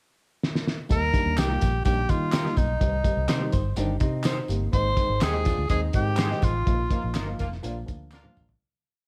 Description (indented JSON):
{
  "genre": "uptempo 1960s-style soul",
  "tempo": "125 BPM",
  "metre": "4/4",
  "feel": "straight",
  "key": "Eb major",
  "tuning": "A4 = 439 Hz",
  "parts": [
    { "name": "cloth-damped thuddy drum kit", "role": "drums", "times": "0.4-8.6 s", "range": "hi-hat, kick drum, snare drum, toms", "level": "-28 LUFS", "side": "equal", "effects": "none" },
    { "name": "breathy tenor saxophone", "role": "melody", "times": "0.9-7.4 s", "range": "Eb4 to C5", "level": "-30 LUFS", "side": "equal", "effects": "none" },
    { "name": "warm baby grand piano", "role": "accompaniment", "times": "0.9-8.4 s", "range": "Eb3 to Eb5", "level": "-35 LUFS", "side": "equal", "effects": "none" },
    { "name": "vintage muted fingered electric bass", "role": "bass", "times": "0.9-8.6 s", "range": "F1 to Eb3", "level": "-30 LUFS", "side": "equal", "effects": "none" },
    { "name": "tambourine and handclaps", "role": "percussion", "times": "0.9-8.5 s", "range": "none", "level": "-43 LUFS", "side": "equal", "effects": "none" },
    { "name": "electric guitar through a small old amp", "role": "stabs", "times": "1.4-8.2 s", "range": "D4 to C5", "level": "-38 LUFS", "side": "equal", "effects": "analog chorus" },
    { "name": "semi-hollow electric guitar", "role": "riff", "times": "3.5-6.4 s", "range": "C4 to C5", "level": "-37 LUFS", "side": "equal", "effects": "none" },
    { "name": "warm horn section", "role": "second line", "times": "6.9-8.5 s", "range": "Bb3 to F4", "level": "-43 LUFS", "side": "equal", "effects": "none" }
  ],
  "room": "light reverb",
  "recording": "dark, warm production",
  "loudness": "-25 LUFS",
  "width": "mono",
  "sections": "0.0-0.9 pickup bar; 0.9-8.6 verse",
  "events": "drum fill 0.4-0.9, 8.1-8.6; fade-out 6.7-8.6; band accent 6.7-8.6",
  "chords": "0.0 N.C.; 0.9 Eb; 2.8 Cm; 4.7 Ab; 6.7 Bbsus4; 7.6 Bb"
}